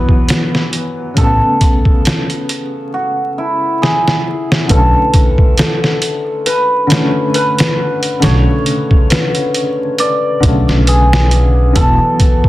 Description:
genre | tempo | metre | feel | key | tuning
trip hop | 68 BPM | 4/4 | swing 55% on 16ths | B dorian | A4 = 440 Hz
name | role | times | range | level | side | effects
cimbalom | melody | 0.0-12.5 s | E4 to D5 | -18 LUFS | right 1 dB | tape echo
felt-muted upright piano | accompaniment | 0.0-12.5 s | C#3 to C#4 | -19 LUFS | left 1 dB | tremolo, tape echo
trip hop sampler-style drum kit | drums | 0.1-12.5 s | hi-hat, kick drum, snare drum | -13 LUFS | equal | none
upright bass | bass | 1.2-12.0 s | E1 to B1 | -12 LUFS | equal | none
large celesta | arpeggios | 4.7-12.5 s | A4 to B4 | -19 LUFS | left 2 dB | tape echo
room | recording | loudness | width
small room ambience | dense, heavily limited modern master, vinyl crackle | -10 LUFS | side -16 dB against mid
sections
0.0-4.7 A section; 4.7-12.5 B section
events
break 2.9-4.7; drum fill 3.8-4.7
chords
0.0 Esus2; 1.2 Amaj7; 4.7 Bm7; 11.8 Esus2

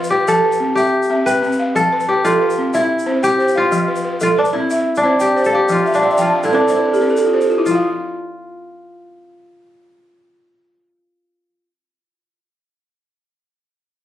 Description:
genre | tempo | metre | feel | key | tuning
west african traditional, West African string and xylophone music | 122 BPM (dotted quarters) | 12/8 | straight | F lydian | A4 = 441 Hz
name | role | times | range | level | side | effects
kora | melody | 0.0-11.6 s | C4 to B4 | -16 LUFS | left 1 dB | none
balafon | arpeggios | 0.0-11.8 s | F3 to A5 | -17 LUFS | right 1 dB | none
tube shaker | percussion | 0.0-7.8 s | none | -35 LUFS | left 4 dB | none
room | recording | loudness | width
light reverb | recorded on a phone in the room, club reverb | -13 LUFS | side -12 dB against mid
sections
0.0-7.7 A section; 7.7-11.6 B section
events
balafon fill 5.9-7.7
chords
0.0 F; 0.8 C; 1.8 F; 2.7 C; 3.7 F; 4.7 C; 5.7 F5; 6.7 N.C.

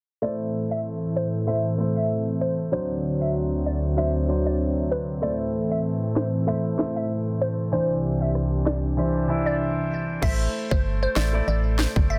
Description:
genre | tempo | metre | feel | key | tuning
dancehall | 96 BPM | 4/4 | swing 56% on 16ths | A dorian | A4 = 440 Hz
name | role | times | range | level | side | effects
glassy wavetable pluck | melody | 0.2-12.2 s | B4 to E5 | -32 LUFS | equal | chorus, digital delay
clear concert grand piano | accompaniment | 0.2-12.2 s | E3 to D5 | -30 LUFS | equal | none
warm analog pad | sustained chords | 0.4-10.2 s | C2 to E5 | -28 LUFS | equal | chorus, sidechain pumping
island pop drum kit | drums | 6.2-12.1 s | crash cymbal, kick drum, rim click, snare drum | -27 LUFS | equal | none
organ-like FM bass | bass | 10.2-12.2 s | G1 to A1 | -26 LUFS | equal | none
room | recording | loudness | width
light reverb | dense, heavily limited modern master, low-pass filter | -25 LUFS | mono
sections
0.2-10.2 A section; 10.2-12.2 B section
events
filter sweep 0.2-10.2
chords
0.2 Am; 2.7 D7; 5.2 Am; 7.7 Cadd9; 10.2 Am

